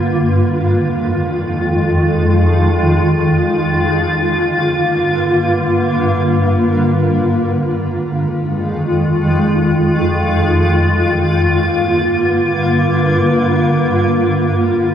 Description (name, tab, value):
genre	hip hop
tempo	free time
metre	none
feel	none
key	F dorian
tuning	A4 = 440 Hz
part	granular cloud pad	solo	0.0-14.9 s	F2 to F4	-12 LUFS	equal	built-in reverb
room	moderate shimmer reverb, RT60 4.7 s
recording	dark, warm production, low-pass filter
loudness	-12 LUFS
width	side -9 dB against mid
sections	0.0-14.1 A section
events	none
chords	0.0 Fm7; 3.5 Gm7; 7.0 Fm7; 10.5 Gm7; 14.1 Fm7